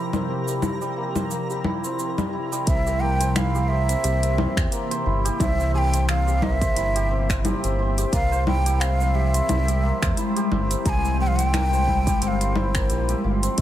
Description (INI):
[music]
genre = organic downtempo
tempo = 88 BPM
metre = 4/4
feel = swing 56% on 16ths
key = unclear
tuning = A4 = 441 Hz
[part]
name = ethereal airy pad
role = sustained chords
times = 0.0-13.6 s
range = C3 to G4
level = -30 LUFS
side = left 1 dB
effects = ensemble chorus, built-in reverb, phaser, sidechain pumping
[part]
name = santur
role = arpeggios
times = 0.0-13.6 s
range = G3 to C5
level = -28 LUFS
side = left 1 dB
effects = digital delay
[part]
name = twinkling granular texture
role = texture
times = 0.0-2.7, 13.6 s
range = Bb4 to Bb5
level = -41 LUFS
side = right 2 dB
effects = built-in reverb
[part]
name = organic electronic drum kit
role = drums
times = 0.1-13.6 s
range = congas, finger snaps, hi-hat, shaker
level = -27 LUFS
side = left 1 dB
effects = soft clipping on snare
[part]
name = breathy ney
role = melody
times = 2.7-13.6 s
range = C5 to Bb5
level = -26 LUFS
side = right 2 dB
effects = digital delay
[part]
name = smooth synth bass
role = bass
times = 2.7-13.6 s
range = G1 to E2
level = -23 LUFS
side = equal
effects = none
[part]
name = electronic kick drum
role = drums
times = 2.7-13.6 s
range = none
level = -25 LUFS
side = equal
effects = none
[sound]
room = light reverb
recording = dense, heavily limited modern master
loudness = -20 LUFS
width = side -12 dB against mid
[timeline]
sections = 0.0-2.7 A section; 2.7-13.6 B section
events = none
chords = 0.0 Fsus2/C; 2.7 C7; 8.1 Fmadd9